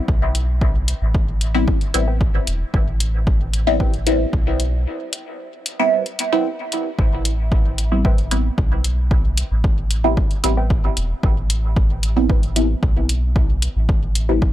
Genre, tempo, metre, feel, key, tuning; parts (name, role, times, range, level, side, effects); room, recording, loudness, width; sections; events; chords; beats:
dub techno; 113 BPM; 4/4; straight; A minor; A4 = 436 Hz
filtered dub chord stab; stabs; 0.0-14.5 s; G3 to E4; -22 LUFS; equal; phaser, sidechain pumping, dub echo
soft dub sub bass; bass; 0.1-14.5 s; E1 to B1; -20 LUFS; equal; tube saturation, sidechain pumping
electronic kick drum; drums; 0.1-14.5 s; -19 LUFS; equal
electronic hi-hat; drums; 0.3-14.3 s; -24 LUFS; left 2 dB
filtered dub chord stab; riff; 2.1-12.4 s; B4 to G5; -33 LUFS; left 2 dB; chorus, sidechain pumping, dub echo
little or no reverb; dry, gritty hardware recording; -16 LUFS; side -13 dB against mid
0.0-14.5 A section
break 4.9-7.0
0.0 Am9
0.08 | 0.61 1.15 1.68 2.21 | 2.74 3.27 3.80 4.33 | 4.86 5.39 5.92 6.46 | 6.99 7.52 8.05 8.58 | 9.11 9.64 10.17 10.70 | 11.23 11.77 12.30 12.83 | 13.36 13.89 14.42